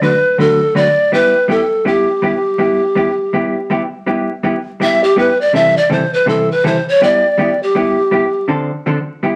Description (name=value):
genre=country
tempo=163 BPM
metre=4/4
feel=swing 64% on 8ths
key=G major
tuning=A4 = 440 Hz
part: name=breathy mellow polished pan flute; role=melody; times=0.0-8.5 s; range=G4 to E5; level=-15 LUFS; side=equal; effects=none
part: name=vintage hollow-body jazz guitar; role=accompaniment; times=0.0-9.4 s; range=C3 to B4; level=-19 LUFS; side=equal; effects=none
room=moderate club reverb, RT60 0.8 s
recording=vinyl crackle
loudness=-14 LUFS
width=mono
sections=0.0-4.1 A section; 4.1-9.4 B section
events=pan flute solo 4.1-9.4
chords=0.0 D6; 1.1 G6; 5.5 C6; 7.0 G6; 8.5 Dm7